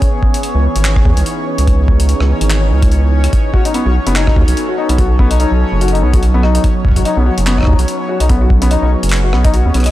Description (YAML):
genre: IDM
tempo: 145 BPM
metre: 4/4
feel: swing 56% on 16ths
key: unclear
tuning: A4 = 440 Hz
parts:
  - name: warbly tape-like pad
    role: sustained chords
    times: 0.0-9.9 s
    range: E3 to A4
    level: -21 LUFS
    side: right 1 dB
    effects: chorus, built-in reverb, phaser
  - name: electronic kick drum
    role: drums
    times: 0.0-9.5 s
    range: none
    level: -13 LUFS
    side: equal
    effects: overdrive, studio ambience
  - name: jungle sampler-style drum kit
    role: drums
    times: 0.0-9.9 s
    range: handclaps, hi-hat, rim click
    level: -22 LUFS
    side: left 1 dB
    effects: studio ambience
  - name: bubbling stepped-filter texture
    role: texture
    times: 0.0-9.9 s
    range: C#4 to C#5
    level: -24 LUFS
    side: equal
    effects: chorus, built-in reverb, sidechain pumping
  - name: round analog bass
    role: bass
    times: 0.5-9.9 s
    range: F#1 to E2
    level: -12 LUFS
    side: equal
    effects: none
  - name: felt-muted upright piano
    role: arpeggios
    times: 3.5-9.9 s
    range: B3 to D#5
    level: -18 LUFS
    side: left 4 dB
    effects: analog delay
room: little or no reverb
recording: dry, gritty hardware recording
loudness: -10 LUFS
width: side -15 dB against mid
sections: 0.0-9.9 A section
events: drum fill 9.7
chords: 0.0 C#m7; 3.3 B7